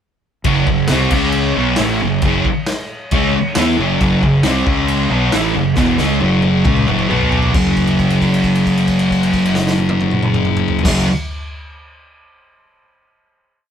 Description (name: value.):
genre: garage rock duo or trio.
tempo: 135 BPM.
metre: 4/4.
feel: straight.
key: unclear.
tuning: A4 = 440 Hz.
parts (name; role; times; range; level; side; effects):
thick fuzz guitar; riff; 0.4-11.1 s; E2 to E4; -14 LUFS; equal; distortion.
growling fingered electric bass; bass; 0.4-11.0 s; E1 to E2; -24 LUFS; equal; overdrive.
raw garage drum kit; drums; 0.4-11.0 s; crash cymbal, kick drum, snare drum, toms; -20 LUFS; equal; none.
room: light reverb.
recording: band playing live in one room.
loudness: -13 LUFS.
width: side -8 dB against mid.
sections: 0.5-7.6 riff; 7.6-11.1 final chord.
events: drum fill 5.8-7.6; held note 7.6-10.9.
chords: 0.5 F#5; 1.1 C#5; 1.6 F#5; 4.7 C#5; 5.1 F#5; 7.1 B5; 7.6 F#5.